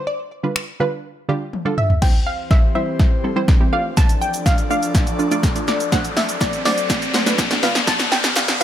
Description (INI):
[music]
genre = dance-pop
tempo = 123 BPM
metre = 4/4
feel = straight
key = D dorian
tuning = A4 = 440 Hz
[part]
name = wide unison pluck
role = melody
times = 0.0-8.6 s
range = D5 to A5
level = -23 LUFS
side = left 1 dB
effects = digital delay
[part]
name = punchy chord stab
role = accompaniment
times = 0.0-8.6 s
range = D3 to D5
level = -22 LUFS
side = right 3 dB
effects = chorus, sidechain pumping
[part]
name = punchy analog drum machine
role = drums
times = 0.6-8.6 s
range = crash cymbal, finger snaps, hi-hat, kick drum, shaker, snare drum, toms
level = -17 LUFS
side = equal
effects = none
[part]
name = airy breathy pad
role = sustained chords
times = 2.3-8.6 s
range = D2 to D5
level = -27 LUFS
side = left 2 dB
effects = chorus, sidechain pumping
[part]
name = riser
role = sound effects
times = 3.7-8.6 s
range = none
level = -25 LUFS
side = left 2 dB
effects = none
[part]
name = group handclap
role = percussion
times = 6.4-8.5 s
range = none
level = -32 LUFS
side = left 5 dB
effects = none
[sound]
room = light reverb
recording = high-pass filter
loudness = -16 LUFS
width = side -10 dB against mid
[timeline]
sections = 0.0-2.0 A section; 2.0-8.6 B section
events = drum fill 1.5-2.0, 2.0-8.6; build-up 2.0-8.6; filter sweep 2.0-8.6; riser 3.7-8.6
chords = 0.0 G7/D; 2.0 C; 3.7 Dm; 5.9 D7; 7.6 G7/D